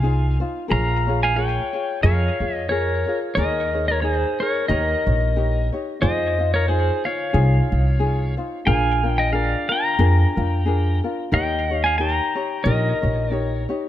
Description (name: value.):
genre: Hawaiian.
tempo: 90 BPM.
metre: 4/4.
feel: swing 56% on 8ths.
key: unclear.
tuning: A4 = 440 Hz.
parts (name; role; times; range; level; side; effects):
pedal steel guitar; melody; 0.0-13.7 s; Ab4 to Bb5; -23 LUFS; left 1 dB; tape echo.
ukulele; accompaniment; 0.0-13.9 s; D4 to Db5; -26 LUFS; left 2 dB; none.
upright bass; bass; 0.0-13.6 s; Bb1 to F2; -20 LUFS; equal; none.
room: light reverb.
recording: echo-heavy mix.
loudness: -18 LUFS.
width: side -12 dB against mid.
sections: 0.0-13.9 A section.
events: none.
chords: 0.0 Fm7; 0.7 Bbm7; 3.4 Eb7sus4; 4.7 Eb7; 6.0 Fm7; 8.7 Bb7; 11.3 Eb7.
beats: 0.03 | 0.70 1.36 2.03 2.69 | 3.36 4.02 4.69 5.35 | 6.01 6.68 7.34 8.00 | 8.67 9.33 9.99 10.66 | 11.32 11.98 12.64 13.31.